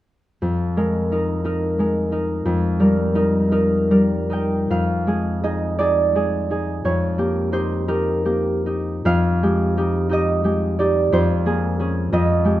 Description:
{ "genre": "classical, solo harp piece", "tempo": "48-61 BPM (dotted quarters)", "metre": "6/8", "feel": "rubato", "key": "F minor", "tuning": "A4 = 440 Hz", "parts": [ { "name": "concert harp", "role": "solo", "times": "0.4-12.6 s", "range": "F2 to G5", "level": "-17 LUFS", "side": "equal", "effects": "none" } ], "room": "moderate recital hall reverb, RT60 1.4 s", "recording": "none", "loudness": "-18 LUFS", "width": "side -14 dB against mid", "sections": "0.4-4.7 A section; 4.7-12.6 B section", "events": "none", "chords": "0.4 Fm7; 2.5 Ebadd9/F; 4.7 Fm7; 6.9 Eb9/F; 9.1 Fm9; 11.1 Bbm9/F" }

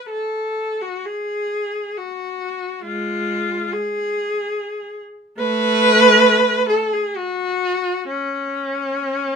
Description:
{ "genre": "classical, free, expressive piece for unaccompanied viola", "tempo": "free time", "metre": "none", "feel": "none", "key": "F# minor", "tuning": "A4 = 440 Hz", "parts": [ { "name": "rich viola", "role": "solo", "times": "0.0-9.4 s", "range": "G#3 to B4", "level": "-18 LUFS", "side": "equal", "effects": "none" } ], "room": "little or no reverb", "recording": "close, detailed microphones", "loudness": "-17 LUFS", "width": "side -6 dB against mid", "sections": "0.1-9.4 A section", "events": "none", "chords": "none" }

